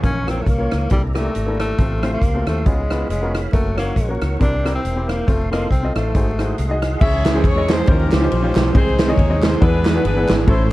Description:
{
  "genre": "uptempo gospel",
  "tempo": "138 BPM",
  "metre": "4/4",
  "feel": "swing 57% on 8ths",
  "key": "Bb harmonic minor, C# harmonic minor from 7.0 s",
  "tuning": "A4 = 440 Hz",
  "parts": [
    { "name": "breathy tenor saxophone", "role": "melody", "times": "0.0-6.8 s", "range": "G3 to D4", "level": "-24 LUFS", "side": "left 1 dB", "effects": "none" },
    { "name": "clear baby grand piano", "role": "accompaniment", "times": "0.0-10.7 s", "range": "Ab2 to Eb5", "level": "-25 LUFS", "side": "left 1 dB", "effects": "none" },
    { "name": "tonewheel organ", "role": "sustained chords", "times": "0.0-10.7 s", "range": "B#2 to Db6", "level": "-29 LUFS", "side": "right 2 dB", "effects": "slow rotary speaker, overdrive, chorus vibrato" },
    { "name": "fingered electric bass", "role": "bass", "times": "0.0-10.7 s", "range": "E1 to E2", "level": "-21 LUFS", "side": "equal", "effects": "none" },
    { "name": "swinging big-band drum kit", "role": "drums", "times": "0.0-10.6 s", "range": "crash cymbal, hi-hat, kick drum, ride cymbal, rim click, snare drum", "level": "-19 LUFS", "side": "equal", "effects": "none" },
    { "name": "clear saxophone section", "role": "melody", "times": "7.0-10.7 s", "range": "C#4 to E5", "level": "-22 LUFS", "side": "left 2 dB", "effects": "none" },
    { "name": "group handclap", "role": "percussion", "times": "7.3-10.4 s", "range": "none", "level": "-33 LUFS", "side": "right 2 dB", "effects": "none" }
  ],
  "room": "little or no reverb",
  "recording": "vinyl crackle",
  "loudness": "-15 LUFS",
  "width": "side -17 dB against mid",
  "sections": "0.0-7.0 A section; 7.0-10.7 B section",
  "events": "none",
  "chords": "0.0 Bbm; 0.9 C13; 1.8 F/A; 2.7 Db7; 3.5 Gb; 4.4 C7; 5.3 F; 6.1 Ab7; 7.0 C#m; 7.9 D#13; 8.7 G#/B#; 9.6 E7",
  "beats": "| 0.03 0.47 0.91 1.34 | 1.78 2.22 2.65 3.09 | 3.53 3.96 4.40 4.84 | 5.27 5.71 6.14 6.58 | 7.01 7.45 7.88 8.31 | 8.74 9.18 9.61 10.04 | 10.47"
}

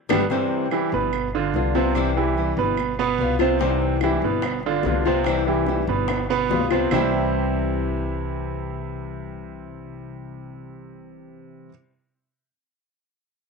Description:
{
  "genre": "latin, Cuban son and guajira",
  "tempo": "145 BPM",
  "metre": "4/4",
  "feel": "straight",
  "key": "C major",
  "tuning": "A4 = 441 Hz",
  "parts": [
    { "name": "nylon-string guitar", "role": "accompaniment", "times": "0.1-11.7 s", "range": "C3 to F4", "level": "-26 LUFS", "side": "left 15 dB", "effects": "none" },
    { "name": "clear baby grand piano", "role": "arpeggios", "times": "0.1-11.7 s", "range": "B2 to C5", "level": "-24 LUFS", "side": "right 9 dB", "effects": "none" },
    { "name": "upright bass", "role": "bass", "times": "0.1-11.7 s", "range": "G1 to C2", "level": "-28 LUFS", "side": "left 1 dB", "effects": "none" },
    { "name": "bongos", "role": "percussion", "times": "0.1-0.2, 3.6-7.0 s", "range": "none", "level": "-30 LUFS", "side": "left 13 dB", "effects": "none" },
    { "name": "claves", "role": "percussion", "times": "0.1-7.0 s", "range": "none", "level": "-33 LUFS", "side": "right 12 dB", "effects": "none" }
  ],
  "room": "moderate spring reverb, RT60 1.1 s, small room ambience",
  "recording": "1960s-style stereo with parts hard left and right",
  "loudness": "-20 LUFS",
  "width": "side -4 dB against mid",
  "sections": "0.3-6.9 A section; 6.9-10.2 B section",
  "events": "drum fill 0.0-0.3; band accent 0.0-0.3",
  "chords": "0.3 C; 1.1 G7; 2.0 C; 2.8 G7; 3.6 C; 4.4 G7; 5.3 C; 6.1 G7; 6.9 C",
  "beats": "| 0.30 0.72 1.13 1.54 | 1.96 2.37 2.78 3.20 | 3.61 4.02 4.44 4.85 | 5.26 5.68 6.09 6.50 | 6.92 7.33 7.75 8.16 | 8.57 8.99 9.40 9.81"
}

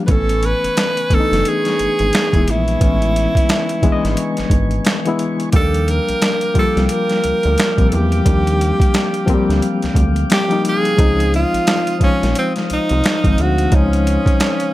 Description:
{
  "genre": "R&B, neo-soul",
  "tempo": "88 BPM",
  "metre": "4/4",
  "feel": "swing 60% on 16ths",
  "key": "unclear",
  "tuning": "A4 = 439 Hz",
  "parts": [
    { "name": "barky reed electric piano", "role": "accompaniment", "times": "0.0-14.7 s", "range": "E3 to Eb5", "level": "-20 LUFS", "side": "left 4 dB", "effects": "overdrive, fast tremolo" },
    { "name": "mellow tonewheel organ", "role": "sustained chords", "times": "0.0-14.7 s", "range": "B4 to Eb6", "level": "-28 LUFS", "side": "right 1 dB", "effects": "slow rotary speaker" },
    { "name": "breathy tenor saxophone", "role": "melody", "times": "0.1-14.7 s", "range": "C4 to B4", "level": "-19 LUFS", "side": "right 1 dB", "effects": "none" },
    { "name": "rubbery square bass", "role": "bass", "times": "0.1-14.3 s", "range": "E1 to Fb2", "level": "-18 LUFS", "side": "right 1 dB", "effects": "none" },
    { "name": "boom bap sampler-style drum kit", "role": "drums", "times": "0.1-14.7 s", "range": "finger snaps, hi-hat, kick drum, snare drum", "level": "-17 LUFS", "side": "equal", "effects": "none" }
  ],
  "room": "digital ambience",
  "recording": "none",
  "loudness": "-13 LUFS",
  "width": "side -16 dB against mid",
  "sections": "0.0-14.7 A section",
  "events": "none",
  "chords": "0.1 Amaj9; 5.5 Ebmaj9; 11.0 Dbmaj9",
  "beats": "| 0.08 0.76 1.44 2.12 | 2.81 3.49 4.17 4.85 | 5.54 6.22 6.90 7.58 | 8.26 8.94 9.62 10.31 | 10.99 11.67 12.35 13.04 | 13.72 14.40"
}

